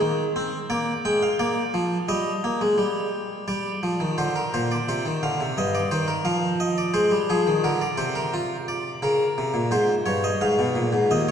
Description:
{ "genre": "classical, baroque-style two-part invention for harpsichord", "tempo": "86 BPM", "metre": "4/4", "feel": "straight", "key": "unclear", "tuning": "A4 = 442 Hz", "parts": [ { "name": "harpsichord", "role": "solo", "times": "0.0-11.3 s", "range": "Eb2 to G5", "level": "-21 LUFS", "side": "equal", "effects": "none" } ], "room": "wet church reverb, RT60 3.0 s", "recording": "nothing above 10.8 kHz", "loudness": "-21 LUFS", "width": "side -8 dB against mid", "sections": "0.0-3.5 A section; 3.5-11.3 B section", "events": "none", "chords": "0.0 Ab (rootless); 0.7 Bb; 2.1 Eb/G; 3.5 Gm; 4.9 Cm; 6.3 Fm7; 7.6 Bb; 9.0 Bbm7; 10.4 Abm69" }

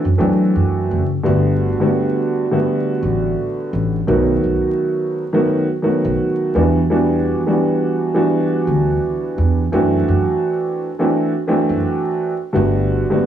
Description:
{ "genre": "hip hop, boom-bap hip-hop", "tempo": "85 BPM", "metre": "4/4", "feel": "swing 56% on 16ths", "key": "G major", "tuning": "A4 = 441 Hz", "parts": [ { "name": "dark upright piano", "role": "accompaniment", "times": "0.0-13.3 s", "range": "D3 to F#4", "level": "-16 LUFS", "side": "right 1 dB", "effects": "high-pass filter, low-pass filter, cassette tape" }, { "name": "upright bass", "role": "bass", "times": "0.0-13.0 s", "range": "F#1 to F#3", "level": "-19 LUFS", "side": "equal", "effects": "none" } ], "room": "moderate booth ambience, RT60 0.2 s", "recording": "home recording on cassette, vinyl crackle, studio ambience", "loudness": "-15 LUFS", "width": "side -10 dB against mid", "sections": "0.0-1.3 A section; 1.3-13.3 B section", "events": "none", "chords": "0.0 D9/F#; 1.3 Gmaj9; 4.1 B7; 6.5 Em9; 9.7 D9/F#; 12.5 Gmaj9" }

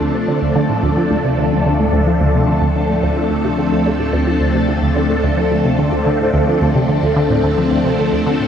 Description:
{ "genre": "ambient, sequencer-driven space music", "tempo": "109 BPM", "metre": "4/4", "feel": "straight", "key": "unclear", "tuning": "A4 = 440 Hz", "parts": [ { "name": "phased string machine", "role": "sustained chords", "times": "0.0-8.5 s", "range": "F3 to A4", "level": "-16 LUFS", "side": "equal", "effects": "ensemble chorus, phaser" }, { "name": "resonant blip pluck", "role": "riff", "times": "0.0-8.5 s", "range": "D2 to F3", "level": "-17 LUFS", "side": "right 1 dB", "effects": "phaser, tape echo" }, { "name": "analog drone", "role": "bass", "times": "1.1-8.5 s", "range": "D2", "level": "-24 LUFS", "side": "equal", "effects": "chorus" } ], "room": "wet huge ambient reverb, RT60 7.2 s", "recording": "none", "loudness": "-13 LUFS", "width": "side -8 dB against mid", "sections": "0.0-8.5 A section", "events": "none", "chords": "0.0 Dm7" }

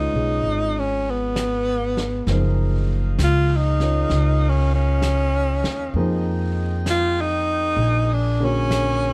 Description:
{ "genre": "jazz ballad", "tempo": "65 BPM", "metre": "4/4", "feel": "swing 67% on 8ths", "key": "unclear", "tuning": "A4 = 438 Hz", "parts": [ { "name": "breathy tenor saxophone", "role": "melody", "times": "0.0-9.1 s", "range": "Cb4 to F4", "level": "-24 LUFS", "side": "equal", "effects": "none" }, { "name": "warm grand piano", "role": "accompaniment", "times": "0.0-9.1 s", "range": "D3 to D5", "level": "-31 LUFS", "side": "equal", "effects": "none" }, { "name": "upright bass", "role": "bass", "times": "0.0-9.1 s", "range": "Gb1 to F2", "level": "-24 LUFS", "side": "equal", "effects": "none" }, { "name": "vintage brush drum kit", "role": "drums", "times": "0.4-9.1 s", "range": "brushed snare drum, hi-hat, snare drum", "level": "-34 LUFS", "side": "equal", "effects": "none" }, { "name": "mellow saxophone section", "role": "sustained chords", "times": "2.3-9.1 s", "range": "Bb3 to Ab5", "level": "-39 LUFS", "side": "equal", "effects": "none" } ], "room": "light reverb", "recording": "dark, warm production", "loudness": "-21 LUFS", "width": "mono", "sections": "0.0-9.1 A section", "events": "tenor saxophone solo 0.0-9.1", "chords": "0.0 Db7b9; 2.3 Gbmaj13; 6.0 Fm9; 7.8 Bb7alt" }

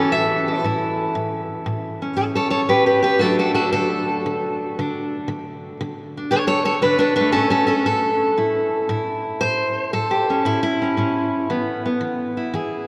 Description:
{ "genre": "acoustic country blues, solo or duo", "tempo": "116 BPM", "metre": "4/4", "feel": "swing 67% on 8ths", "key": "A mixolydian", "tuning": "A4 = 438 Hz", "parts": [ { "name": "fingerpicked steel-string acoustic guitar", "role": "solo", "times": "0.0-12.9 s", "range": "A2 to E5", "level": "-21 LUFS", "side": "equal", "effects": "none" } ], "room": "wet cathedral reverb, RT60 5.6 s", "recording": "in a vast, echoing space", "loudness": "-20 LUFS", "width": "mono", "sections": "0.0-12.9 A section", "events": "none", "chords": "0.0 A; 3.2 D; 7.4 A; 11.5 E" }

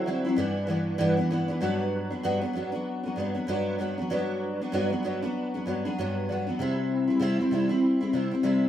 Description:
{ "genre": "indie pop", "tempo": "97 BPM", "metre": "4/4", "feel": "swing 60% on 16ths", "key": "G major", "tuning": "A4 = 443 Hz", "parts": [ { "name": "picked steel-string acoustic guitar", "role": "solo", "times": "0.0-8.7 s", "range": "G2 to E4", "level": "-25 LUFS", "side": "equal", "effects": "ensemble chorus, warbly pitch drift" } ], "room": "wet studio reverb, RT60 0.6 s", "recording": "rough home demo mix", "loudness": "-25 LUFS", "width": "side -11 dB against mid", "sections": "0.0-1.6 A section; 1.6-8.7 B section", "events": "none", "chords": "0.4 G6; 1.6 Gmaj7; 6.6 C" }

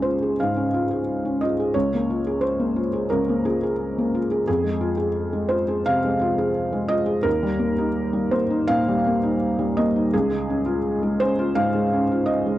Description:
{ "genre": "neoclassical minimalist piano", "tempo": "86 BPM", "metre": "4/4", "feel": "uneven beats, rubato", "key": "unclear", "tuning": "A4 = 440 Hz", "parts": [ { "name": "felt-muted upright piano", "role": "solo", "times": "0.0-12.6 s", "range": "Db2 to F5", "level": "-20 LUFS", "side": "equal", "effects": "none" } ], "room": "light reverb", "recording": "dry, close 1970s-style studio recording", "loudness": "-20 LUFS", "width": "side -14 dB against mid", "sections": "0.0-12.6 A section", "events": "none", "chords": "0.0 Db; 1.7 Bbm7/Db; 4.5 Fm; 7.3 Eb; 10.1 Db" }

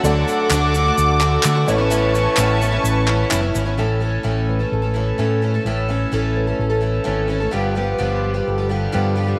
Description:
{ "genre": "indie folk with a building arrangement", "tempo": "128 BPM", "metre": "4/4", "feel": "straight", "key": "A major", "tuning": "A4 = 440 Hz", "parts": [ { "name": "picked twelve-string acoustic guitar", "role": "accompaniment", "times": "0.0-9.4 s", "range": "G2 to A4", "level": "-24 LUFS", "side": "equal", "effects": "none" }, { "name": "warm upright piano", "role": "accompaniment", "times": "0.0-3.8 s", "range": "A1 to D5", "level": "-28 LUFS", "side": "equal", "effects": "none" }, { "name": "warm chamber string section", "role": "sustained chords", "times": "0.0-3.8 s", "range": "A4 to D6", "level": "-23 LUFS", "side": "equal", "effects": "none" }, { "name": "fingered electric bass", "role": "bass", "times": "0.0-9.3 s", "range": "F#1 to D3", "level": "-23 LUFS", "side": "equal", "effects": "none" }, { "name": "egg shaker", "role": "percussion", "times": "0.0-3.7 s", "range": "none", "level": "-33 LUFS", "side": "equal", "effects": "none" }, { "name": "group handclap", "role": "percussion", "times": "0.5-3.4 s", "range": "none", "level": "-25 LUFS", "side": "equal", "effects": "none" }, { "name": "fingerpicked steel-string acoustic guitar", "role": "accompaniment", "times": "3.8-9.4 s", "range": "G2 to A4", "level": "-27 LUFS", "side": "equal", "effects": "none" } ], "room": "moderate plate reverb, RT60 2.6 s", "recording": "none", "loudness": "-19 LUFS", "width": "mono", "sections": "0.0-3.8 A section; 3.8-9.4 B section", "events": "none", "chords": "0.0 D; 1.7 Aadd9; 3.8 A; 7.5 G7" }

